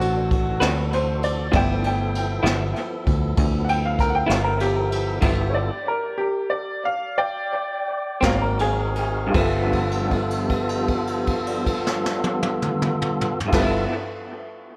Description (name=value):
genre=slow blues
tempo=52-65 BPM (dotted quarters)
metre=12/8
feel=straight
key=G mixolydian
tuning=A4 = 441 Hz
part: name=clear upright piano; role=accompaniment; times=0.0-13.9 s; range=F3 to G5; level=-27 LUFS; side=equal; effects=analog delay
part: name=tonewheel organ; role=sustained chords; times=0.0-13.9 s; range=E3 to Bb4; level=-30 LUFS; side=equal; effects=overdrive, fast rotary speaker
part: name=fingered electric bass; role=bass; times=0.0-13.9 s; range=G1 to D2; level=-27 LUFS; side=equal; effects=none
part: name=jazz brush drum kit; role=drums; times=0.0-13.7 s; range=crash cymbal, kick drum, ride cymbal, snare drum, toms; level=-28 LUFS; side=equal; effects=analog delay
part: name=electric guitar through a small old amp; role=accompaniment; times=0.6-13.9 s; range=G2 to B4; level=-29 LUFS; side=equal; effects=tremolo, analog delay
room=light reverb, small room ambience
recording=echo-heavy mix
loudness=-23 LUFS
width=mono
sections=0.0-9.3 A section; 9.3-14.0 B section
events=upright piano solo 0.0-9.3; slowing down 4.0-9.3; stop 5.2-8.2; held note 9.3-13.5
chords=0.0 D13; 1.5 G13; 8.2 Ab9; 9.3 G13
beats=0.61 | 1.53 2.45 3.37 4.29 | 5.22 6.18 7.17 8.22 | 9.34 10.51 11.67 12.83